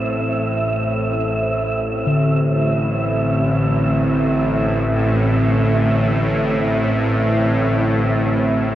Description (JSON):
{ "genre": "dark ambient drone", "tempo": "free time", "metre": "none", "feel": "none", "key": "A minor", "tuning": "A4 = 440 Hz", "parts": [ { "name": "deep dark ambient pad", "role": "sustained chords", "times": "0.0-8.8 s", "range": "C4 to E5", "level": "-24 LUFS", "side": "right 1 dB", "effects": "chorus, built-in reverb" }, { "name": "bronze singing bowl", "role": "arpeggios", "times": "0.0-8.7 s", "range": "D3 to A4", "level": "-23 LUFS", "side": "left 2 dB", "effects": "tape echo" }, { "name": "bowed-like drone", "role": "drone", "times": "0.0-8.8 s", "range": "A1 to A2", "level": "-18 LUFS", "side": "equal", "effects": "built-in reverb" }, { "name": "wind-like tuned noise texture", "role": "texture", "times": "0.0-8.8 s", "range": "E5", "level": "-24 LUFS", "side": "right 2 dB", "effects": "built-in reverb" } ], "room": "wet huge ambient reverb, RT60 7.7 s", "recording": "worn, warbling old tape, cassette tape, warbly pitch drift", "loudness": "-16 LUFS", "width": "side -12 dB against mid", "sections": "0.0-8.8 A section", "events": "none", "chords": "0.0 Am", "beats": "free time" }